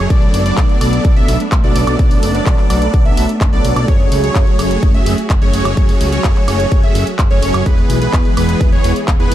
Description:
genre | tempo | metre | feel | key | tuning
EDM, festival progressive house | 127 BPM | 4/4 | straight | F# minor | A4 = 440 Hz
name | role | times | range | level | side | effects
warm studio string section | sustained chords | 0.0-9.3 s | E3 to G#4 | -24 LUFS | right 1 dB | sidechain pumping
wide unison lead | arpeggios | 0.0-9.3 s | B4 to E5 | -22 LUFS | right 1 dB | lush chorus, sidechain pumping, ping-pong delay
supersaw chords | riff | 0.0-9.3 s | E3 to E5 | -19 LUFS | equal | phaser, cassette tape, sidechain pumping, ping-pong delay
fat analog bass | bass | 0.0-9.3 s | E1 to C#2 | -18 LUFS | equal | tube saturation, sidechain pumping
big-room dance drum kit | drums | 0.1-9.3 s | handclaps, hi-hat, woodblock | -23 LUFS | right 1 dB | none
electronic kick drum | drums | 0.1-9.2 s | none | -13 LUFS | equal | none
room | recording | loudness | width
digital ambience | dark, warm production | -11 LUFS | side -12 dB against mid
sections
0.0-9.3 A section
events
none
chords
0.1 Bm7; 3.9 F#madd9; 7.7 E

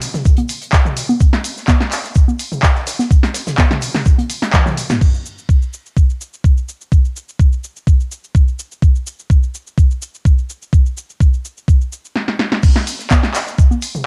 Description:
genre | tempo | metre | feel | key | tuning
house | 126 BPM | 4/4 | straight | none | none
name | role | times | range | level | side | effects
natural country drum kit | drums | 0.0-5.0, 12.6-13.9 s | hi-hat, shaker, snare drum | -36 LUFS | equal | sidechain pumping on hats, high-pass filter on hats, cassette tape, high-pass filter on snare, sidechain pumping on perc, high-pass filter on perc, high-pass filter on room
punchy analog drum machine | drums | 0.0-14.0 s | cabasa, congas, crash cymbal, handclaps, hi-hat, snare drum, toms | -21 LUFS | equal | cassette tape
electronic kick drum | drums | 0.3-13.7 s | none | -14 LUFS | equal | cassette tape
room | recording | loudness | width
little or no reverb | home recording on cassette | -16 LUFS | mono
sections
0.0-5.0 A section; 5.0-12.6 B section; 12.6-14.1 C section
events
drum fill 4.5-5.0, 12.2-12.6; band accent 4.5; stop 12.2-12.6; drop 12.6-14.1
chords
none

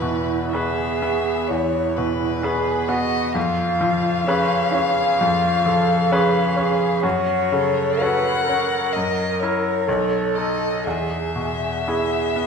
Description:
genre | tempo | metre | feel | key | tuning
classical, slow romantic movement for piano trio | 58-66 BPM | 4/4 | rubato | E major | A4 = 440 Hz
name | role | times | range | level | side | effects
muted violin | melody | 0.0-12.5 s | B4 to F#5 | -23 LUFS | left 5 dB | none
muted cello | second line | 0.0-12.5 s | C#4 to B4 | -24 LUFS | right 6 dB | none
bright grand piano | accompaniment | 0.0-12.5 s | B1 to B4 | -22 LUFS | left 1 dB | none
room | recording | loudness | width
wet recital hall reverb, RT60 1.4 s | recorded in a church or concert hall | -18 LUFS | side -6 dB against mid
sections
0.0-12.5 A section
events
none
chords
0.0 E; 3.4 C#7/E#; 7.0 F#m; 8.9 F#7; 9.9 B9; 10.8 E

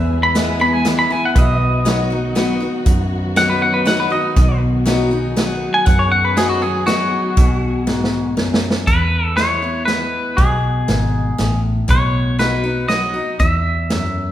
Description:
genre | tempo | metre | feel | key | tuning
honky-tonk and classic country | 120 BPM | 3/4 | straight | E major | A4 = 441 Hz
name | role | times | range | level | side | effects
picked steel-string acoustic guitar | accompaniment | 0.0-14.3 s | E2 to F#4 | -21 LUFS | left 2 dB | none
dark studio string section | sustained chords | 0.0-8.8 s | D#3 to G#4 | -27 LUFS | equal | none
pedal steel guitar | sustained chords | 0.0-8.8 s | B4 to E5 | -29 LUFS | right 2 dB | none
vintage muted fingered electric bass | bass | 0.0-14.3 s | G#1 to F#2 | -21 LUFS | equal | none
twangy electric guitar | melody | 0.2-14.3 s | F#4 to B5 | -18 LUFS | equal | none
vintage drum kit | drums | 0.4-14.0 s | hi-hat, kick drum, snare drum | -18 LUFS | right 1 dB | none
room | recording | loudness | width
wet recital hall reverb, RT60 1.4 s | recorded in a church or concert hall | -14 LUFS | side -12 dB against mid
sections
0.0-8.9 A section; 8.9-14.3 B section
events
clean electric guitar solo 0.0-8.9; drum fill 7.9-8.9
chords
0.0 E; 1.4 B; 8.9 E; 11.9 B; 13.4 N.C.

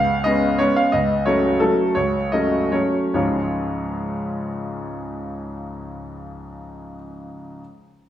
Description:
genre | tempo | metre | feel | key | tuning
classical, piano waltz | 134-185 BPM | 3/4 | rubato | Db major | A4 = 440 Hz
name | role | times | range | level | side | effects
bright grand piano | solo | 0.0-7.6 s | Db2 to F5 | -20 LUFS | equal | none
room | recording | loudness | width
wet recital hall reverb, RT60 1.3 s | recorded in a church or concert hall | -18 LUFS | side -11 dB against mid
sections
0.0-3.1 A section; 3.1-5.5 B section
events
slowing down 0.4-3.1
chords
0.0 Db7; 0.9 Gbm/Db; 3.1 Db

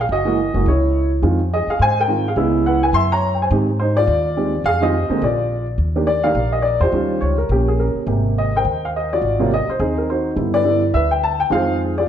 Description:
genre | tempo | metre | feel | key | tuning
jazz piano trio | 210 BPM | 4/4 | swing 59% on 8ths | Eb major | A4 = 441 Hz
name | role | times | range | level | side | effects
dark upright piano | melody | 0.0-12.1 s | C3 to C6 | -17 LUFS | equal | none
upright bass | bass | 0.0-12.0 s | F1 to Ab2 | -21 LUFS | equal | none
room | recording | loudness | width
wet recital hall reverb, RT60 1.6 s | dark, warm production, nothing above 10.4 kHz | -16 LUFS | side -9 dB against mid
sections
0.0-5.8 A section; 5.8-12.1 B section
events
none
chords
0.1 Gb7(no3); 1.2 Fm7; 2.4 Dbm7; 2.9 Gb7; 3.5 Abmaj7; 4.7 Fm7; 5.2 Bb; 5.8 Ebmaj7; 6.9 Eb9; 8.1 Abmaj9; 10.4 G6; 11.5 Fm7

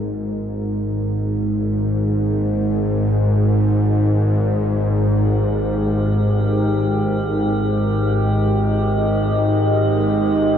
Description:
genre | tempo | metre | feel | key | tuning
dark ambient drone | free time | none | none | unclear | A4 = 441 Hz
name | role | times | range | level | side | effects
deep dark ambient pad | sustained chords | 0.0-10.6 s | G#3 to D#5 | -23 LUFS | equal | chorus, built-in reverb
bowed-like drone | drone | 0.0-10.6 s | G#1 to G#2 | -18 LUFS | equal | built-in reverb
metallic inharmonic drone | texture | 5.3-10.6 s | G4 | -26 LUFS | right 2 dB | chorus, built-in reverb
room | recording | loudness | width
wet cathedral reverb, RT60 6.3 s | none | -16 LUFS | side -8 dB against mid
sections
0.0-10.6 A section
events
filter sweep on synth drone 0.0-10.6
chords
0.0 G#5

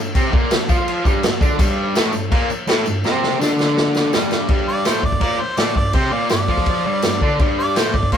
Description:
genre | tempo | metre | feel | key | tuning
garage rock duo or trio | 166 BPM | 4/4 | straight | G minor | A4 = 439 Hz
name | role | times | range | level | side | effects
fuzz guitar | riff | 0.0-8.2 s | G2 to F4 | -19 LUFS | equal | distortion
vintage drum kit | drums | 0.1-8.2 s | crash cymbal, kick drum, snare drum | -18 LUFS | equal | none
tambourine | percussion | 0.2-7.8 s | none | -36 LUFS | left 3 dB | none
clear harmonica | melody | 4.7-8.2 s | C5 to D5 | -22 LUFS | right 1 dB | overdrive
room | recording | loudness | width
moderate stone room reverb, RT60 1.0 s | band playing live in one room | -15 LUFS | side -8 dB against mid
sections
0.0-4.5 A section; 4.5-8.2 B section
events
drum fill 3.0-4.5; harmonica solo 4.5-8.2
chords
0.0 Gm

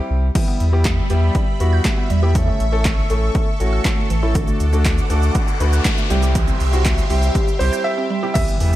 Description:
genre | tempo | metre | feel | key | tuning
dance-pop | 120 BPM | 4/4 | straight | E minor | A4 = 440 Hz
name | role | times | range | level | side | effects
clear concert grand piano | melody | 0.0-0.1, 7.6-8.8 s | C5 to E5 | -23 LUFS | right 3 dB | digital delay
warm concert grand piano | accompaniment | 0.0-8.8 s | E3 to B4 | -24 LUFS | left 2 dB | sidechain pumping
warm sub bass | bass | 0.1-8.8 s | A1 to E2 | -17 LUFS | equal | sidechain pumping
supersaw pad | sustained chords | 0.4-8.8 s | E3 to D6 | -27 LUFS | right 1 dB | phaser, sidechain pumping
mallet-like synth pluck | arpeggios | 0.4-8.3 s | C#3 to G6 | -28 LUFS | right 5 dB | chorus, sidechain pumping, digital delay
punchy analog drum machine | drums | 0.4-8.8 s | crash cymbal, handclaps, hi-hat, kick drum, shaker, snare drum | -20 LUFS | equal | overdrive
noise sweep and impact | sound effects | 4.8-8.8 s | none | -29 LUFS | equal | none
room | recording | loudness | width
little or no reverb | dark, warm production | -15 LUFS | side -14 dB against mid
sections
0.4-8.4 A section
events
break 0.0-0.4, 7.9-8.4; noise sweep 4.8-8.4; impact 8.4-8.8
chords
0.4 Em; 2.4 A; 4.4 D; 6.1 C

